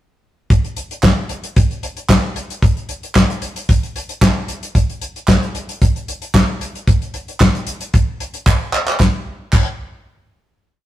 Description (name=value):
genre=funk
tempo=113 BPM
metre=4/4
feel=straight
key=none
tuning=none
part: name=damped 70s drum kit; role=drums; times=0.5-9.7 s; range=crash cymbal, handclaps, hi-hat, kick drum, snare drum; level=-14 LUFS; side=equal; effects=none
part: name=group handclap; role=percussion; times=1.0-9.8 s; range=none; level=-25 LUFS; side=right 3 dB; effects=none
room=moderate stone room reverb, RT60 1.1 s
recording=rough rehearsal-room recording, tube saturation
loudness=-15 LUFS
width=side -14 dB against mid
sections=0.5-9.0 verse; 9.0-10.9 final hit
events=drum fill 8.5-9.0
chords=none